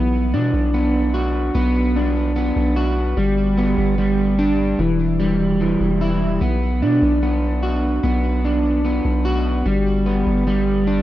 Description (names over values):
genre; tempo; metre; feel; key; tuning
hip hop, trap; 148 BPM; 4/4; half-time; B minor; A4 = 440 Hz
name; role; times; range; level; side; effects
electric guitar at the edge of break-up; arpeggios; 0.0-11.0 s; E3 to F#4; -18 LUFS; equal; analog chorus, digital delay
long sustained 808-style bass; bass; 0.0-11.0 s; E1 to B2; -21 LUFS; equal; none
room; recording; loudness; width
moderate plate reverb, RT60 2.9 s; rough home demo mix; -16 LUFS; side -14 dB against mid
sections
0.0-11.0 A section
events
none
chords
0.0 Bm; 3.2 G; 4.8 Em; 6.4 Bm; 9.7 G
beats
0.33 0.74 1.14 | 1.55 1.95 2.36 2.77 | 3.17 3.58 3.98 4.39 | 4.79 5.20 5.60 6.01 | 6.41 6.82 7.22 7.63 | 8.04 8.44 8.85 9.25 | 9.66 10.06 10.47 10.87